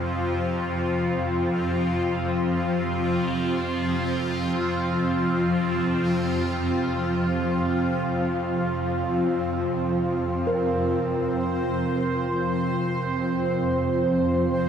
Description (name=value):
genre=dark ambient drone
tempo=free time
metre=none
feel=none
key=unclear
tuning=A4 = 440 Hz
part: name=sweeping resonant pad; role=sustained chords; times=0.0-14.7 s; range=C3 to F4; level=-26 LUFS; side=equal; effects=chorus, shimmer reverb
part: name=gamelan-type bossed gongs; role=arpeggios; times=0.0-14.7 s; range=F2 to Bb4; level=-34 LUFS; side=equal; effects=tape echo, shimmer reverb
part: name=swarming drone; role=drone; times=0.0-14.7 s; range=F2 to F3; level=-27 LUFS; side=equal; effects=built-in reverb
part: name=bubbling stepped-filter texture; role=texture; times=0.0-14.7 s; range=C4 to C5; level=-28 LUFS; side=right 1 dB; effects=chorus, built-in reverb, shimmer reverb
room=wet huge ambient reverb, RT60 8.7 s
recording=none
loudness=-22 LUFS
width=side -8 dB against mid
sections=0.0-11.0 A section; 11.0-14.7 B section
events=none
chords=0.0 F5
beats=free time